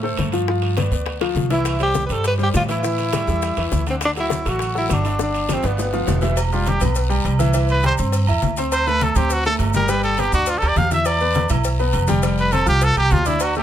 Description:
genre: latin, salsa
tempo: 204 BPM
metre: 4/4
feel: straight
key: C major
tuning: A4 = 445 Hz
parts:
  - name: clear concert grand piano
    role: accompaniment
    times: 0.0-13.6 s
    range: D3 to G6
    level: -24 LUFS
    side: left 1 dB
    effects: none
  - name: upright bass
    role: bass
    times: 0.0-13.6 s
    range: E1 to A2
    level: -21 LUFS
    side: right 1 dB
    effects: none
  - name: bongos and cowbell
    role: percussion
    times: 0.0-13.6 s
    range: none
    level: -30 LUFS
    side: left 7 dB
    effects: none
  - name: congas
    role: percussion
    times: 0.1-13.6 s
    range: none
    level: -27 LUFS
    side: left 3 dB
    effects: none
  - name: guiro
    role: percussion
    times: 0.2-13.6 s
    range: none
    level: -37 LUFS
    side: left 6 dB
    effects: none
  - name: timbales and agogo bells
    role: percussion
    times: 0.2-13.6 s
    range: none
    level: -30 LUFS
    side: right 7 dB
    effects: none
  - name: breathy tenor saxophone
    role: melody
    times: 1.5-6.2 s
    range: B3 to B4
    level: -23 LUFS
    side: right 1 dB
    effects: tape echo
  - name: maracas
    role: percussion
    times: 1.7-13.6 s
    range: none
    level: -35 LUFS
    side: left 5 dB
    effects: none
  - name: bright trumpet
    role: melody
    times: 6.5-13.6 s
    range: E4 to F5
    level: -20 LUFS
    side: equal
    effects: none
room: light reverb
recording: close, detailed microphones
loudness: -17 LUFS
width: side -10 dB against mid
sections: 0.0-6.4 A section; 6.4-13.6 B section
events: drum fill 1.2-1.7, 5.2-6.4; trumpet solo 6.4-13.6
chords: 0.5 G7; 1.7 C; 2.8 A5; 4.0 D; 5.2 G5; 5.8 G7; 6.4 Em; 7.5 C; 8.7 D5; 9.9 G; 11.1 Em; 12.2 Fsus2

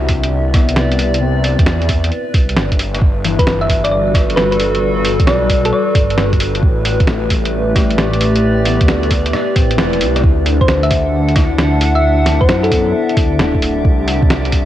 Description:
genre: future garage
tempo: 133 BPM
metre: 4/4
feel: swing 67% on 16ths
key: unclear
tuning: A4 = 437 Hz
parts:
  - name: felt-muted upright piano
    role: accompaniment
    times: 0.0-14.7 s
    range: E3 to A4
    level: -23 LUFS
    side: left 8 dB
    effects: sidechain pumping, cassette tape, tape echo
  - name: warbly tape-like pad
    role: sustained chords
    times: 0.0-14.7 s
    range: G3 to F#5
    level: -19 LUFS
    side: equal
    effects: chorus, built-in reverb, sidechain pumping, cassette tape
  - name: swelling detuned saw bass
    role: bass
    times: 0.0-14.7 s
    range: D1 to F#2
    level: -17 LUFS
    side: equal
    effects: tube saturation, sidechain pumping
  - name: electronic kick drum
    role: drums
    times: 0.1-14.6 s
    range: none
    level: -14 LUFS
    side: equal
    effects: overdrive, cassette tape
  - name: lo-fi sampler-style drum kit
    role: drums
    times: 0.1-14.6 s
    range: hi-hat, rim click, snare drum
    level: -19 LUFS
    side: equal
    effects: cassette tape
  - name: thumb-piano-like synth pluck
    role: melody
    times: 3.4-6.1, 10.6-13.1 s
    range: A4 to E5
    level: -18 LUFS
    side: equal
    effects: chorus, cassette tape, tape echo
  - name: drifting glass-harmonics texture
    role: texture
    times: 11.0-14.7 s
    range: D4 to D5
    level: -30 LUFS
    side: left 1 dB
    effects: chorus, built-in reverb, cassette tape
room: light reverb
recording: home recording on cassette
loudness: -11 LUFS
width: side -12 dB against mid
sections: 0.0-10.2 A section; 10.2-14.7 A section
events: kick drops out 9.8-10.2; band accent 9.8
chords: 0.0 Cmaj9; 3.0 Gmaj9; 6.6 Am11; 10.2 Dadd9; 13.8 Cmaj9

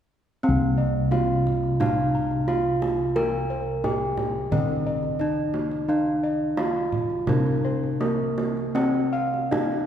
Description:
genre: Javanese gamelan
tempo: 87 BPM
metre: 4/4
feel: uneven beats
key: C slendro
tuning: A4 = 445 Hz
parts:
  - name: gamelan-type bronze metallophone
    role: melody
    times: 0.4-9.9 s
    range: Bb3-40c to Bb4-40c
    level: -26 LUFS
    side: equal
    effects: none
  - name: gamelan-type bossed gongs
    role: arpeggios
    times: 0.4-9.9 s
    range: Bb4-40c to Bb5-40c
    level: -29 LUFS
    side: equal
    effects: none
  - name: gamelan-type bossed gongs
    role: bass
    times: 0.4-9.9 s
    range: C2 to Bb4-40c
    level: -26 LUFS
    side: equal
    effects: none
  - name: kendang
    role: percussion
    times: 1.1-9.8 s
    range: none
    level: -30 LUFS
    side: right 2 dB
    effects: none
room: wet concert hall reverb, RT60 1.9 s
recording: heard from further back in the room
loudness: -22 LUFS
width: side -9 dB against mid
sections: 0.4-9.9 A section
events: none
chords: none

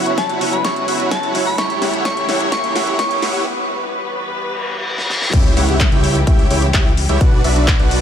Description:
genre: EDM, festival progressive house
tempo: 128 BPM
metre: 4/4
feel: straight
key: unclear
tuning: A4 = 440 Hz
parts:
  - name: soft synth bell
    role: melody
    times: 0.0-3.4 s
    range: A5 to C#6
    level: -22 LUFS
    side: left 1 dB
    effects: chorus, phaser, vintage 12-bit sampler grit, dub echo
  - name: direct-recorded clean electric guitar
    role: accompaniment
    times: 0.0-3.4 s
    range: C#3 to C#5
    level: -27 LUFS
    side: right 3 dB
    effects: ensemble chorus, sidechain pumping
  - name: rich studio string section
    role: sustained chords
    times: 0.0-8.0 s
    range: B2 to C#5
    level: -26 LUFS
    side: left 2 dB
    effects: sidechain pumping, low-pass filter
  - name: supersaw chords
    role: riff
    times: 0.0-8.0 s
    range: D4 to G5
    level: -21 LUFS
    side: right 1 dB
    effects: analog chorus, vintage 12-bit sampler grit, sidechain pumping, low-pass filter, dub echo
  - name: riser, reverse cymbal and impact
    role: sound effects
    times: 0.0-7.2 s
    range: none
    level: -25 LUFS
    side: left 1 dB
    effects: none
  - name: big-room dance drum kit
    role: drums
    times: 0.1-8.0 s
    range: crash cymbal, handclaps, hi-hat, snare drum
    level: -23 LUFS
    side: left 1 dB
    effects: studio reverb
  - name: electronic kick drum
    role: drums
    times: 0.2-7.8 s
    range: none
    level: -14 LUFS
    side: equal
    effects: high-pass filter on kick, studio reverb
  - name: fat analog bass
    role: bass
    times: 5.3-8.0 s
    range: B1 to C#2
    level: -18 LUFS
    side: equal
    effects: sidechain pumping
room: light reverb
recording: high-pass filter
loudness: -14 LUFS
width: side -9 dB against mid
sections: 0.0-5.3 A section; 5.3-8.0 B section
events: build-up 0.0-5.3; drum fill 0.0-3.5, 5.0-5.3; riser 0.0-3.5; filter sweep on string section 0.0-5.3; filter sweep 0.0-5.3; break 3.5-5.3; reverse cymbal 4.6-5.3; drop 5.3-8.0; impact 5.3-7.2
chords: 0.0 B5; 1.6 A; 3.5 Em; 5.3 C#dim; 7.2 Bm

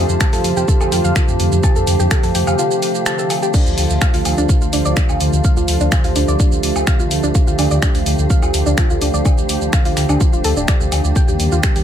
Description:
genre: melodic techno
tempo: 126 BPM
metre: 4/4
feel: straight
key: D minor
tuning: A4 = 440 Hz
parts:
  - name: warm analog pad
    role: sustained chords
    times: 0.0-11.8 s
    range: C3 to G4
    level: -23 LUFS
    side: right 1 dB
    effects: chorus, sidechain pumping
  - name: dark detuned saw bass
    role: bass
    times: 0.0-11.8 s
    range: D1 to F2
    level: -18 LUFS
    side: equal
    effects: sidechain pumping
  - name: swarming drone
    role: drone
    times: 0.0-11.8 s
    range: D3 to D4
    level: -28 LUFS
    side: left 1 dB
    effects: built-in reverb, sidechain pumping
  - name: warbly tape-like pad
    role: texture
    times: 0.0-11.8 s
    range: G4 to A5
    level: -23 LUFS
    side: right 2 dB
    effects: chorus, built-in reverb, sidechain pumping
  - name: deep house drum kit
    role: drums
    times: 0.1-11.8 s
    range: crash cymbal, finger snaps, hi-hat, shaker, woodblock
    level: -22 LUFS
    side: equal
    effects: none
  - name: soft round pluck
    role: arpeggios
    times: 0.2-11.8 s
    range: D4 to A6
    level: -23 LUFS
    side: equal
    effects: chorus, sidechain pumping, tape echo
  - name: electronic kick drum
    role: drums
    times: 0.2-11.7 s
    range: none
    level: -15 LUFS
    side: equal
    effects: none
room: digital ambience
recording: none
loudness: -13 LUFS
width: side -9 dB against mid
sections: 0.0-11.8 A section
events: break 2.6-3.5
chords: 0.0 F; 3.5 Dm; 11.2 Eb

